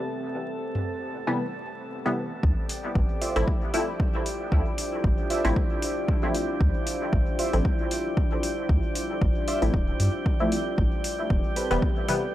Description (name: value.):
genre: dub techno.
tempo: 115 BPM.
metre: 4/4.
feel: swing 55% on 16ths.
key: D minor.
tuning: A4 = 440 Hz.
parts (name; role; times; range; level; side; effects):
deep dark ambient pad; sustained chords; 0.0-12.3 s; C4 to C5; -34 LUFS; equal; chorus, built-in reverb, sidechain pumping.
drifting glass-harmonics texture; texture; 0.0-12.3 s; G3 to A4; -34 LUFS; left 1 dB; chorus, built-in reverb, sidechain pumping.
electronic toms and woodblock; percussion; 0.8-1.4 s; none; -32 LUFS; equal; sidechain pumping on toms, small room ambience, sidechain pumping on perc, dub echo.
filtered dub chord stab; stabs; 1.3-12.2 s; C3 to E4; -30 LUFS; left 1 dB; chorus, phaser, sidechain pumping, dub echo.
round analog bass; bass; 2.4-11.8 s; D1 to G2; -25 LUFS; equal; transformer saturation, sidechain pumping.
electronic kick drum; drums; 2.4-11.9 s; none; -26 LUFS; equal; overdrive, small room ambience.
electronic hi-hat; drums; 2.7-12.2 s; none; -34 LUFS; equal; overdrive, small room ambience.
warbly lo-fi synth keys; riff; 3.2-11.7 s; C4 to E5; -35 LUFS; right 3 dB; chorus, sidechain pumping, dub echo.
room: little or no reverb.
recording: dry, gritty hardware recording, vinyl crackle.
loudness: -23 LUFS.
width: side -13 dB against mid.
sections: 0.0-2.4 A section; 2.4-12.3 B section.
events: filter sweep on ambient pad 0.0-2.4; filter sweep on synth stab 2.4-12.3.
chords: 0.0 Am9; 2.4 Dm9; 10.8 Am9.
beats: | 0.34 0.87 1.39 1.91 | 2.43 2.95 3.48 4.00 | 4.52 5.04 5.56 6.08 | 6.61 7.13 7.65 8.17 | 8.69 9.21 9.74 10.26 | 10.78 11.30 11.82 12.35.